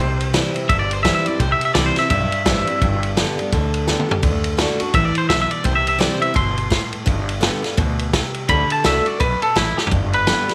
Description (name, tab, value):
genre	rockabilly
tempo	169 BPM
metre	4/4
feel	swing 60% on 8ths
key	G major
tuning	A4 = 439 Hz
part	twangy electric guitar	melody	0.0-10.5 s	E4 to C6	-22 LUFS	equal	tape echo
part	picked steel-string acoustic guitar	accompaniment	0.0-10.5 s	G2 to G4	-25 LUFS	equal	none
part	upright bass	bass	0.0-10.5 s	G1 to D2	-26 LUFS	equal	none
part	vintage drum kit	drums	0.2-10.5 s	kick drum, ride cymbal, snare drum, toms	-23 LUFS	equal	none
room	light reverb, studio ambience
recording	none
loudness	-19 LUFS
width	mono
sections	0.0-9.9 A section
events	clean electric guitar solo 0.0-9.9; drum fill 3.9-4.2, 9.7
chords	0.0 C; 2.8 G; 4.2 D; 5.7 C; 7.1 G; 8.5 D; 9.9 G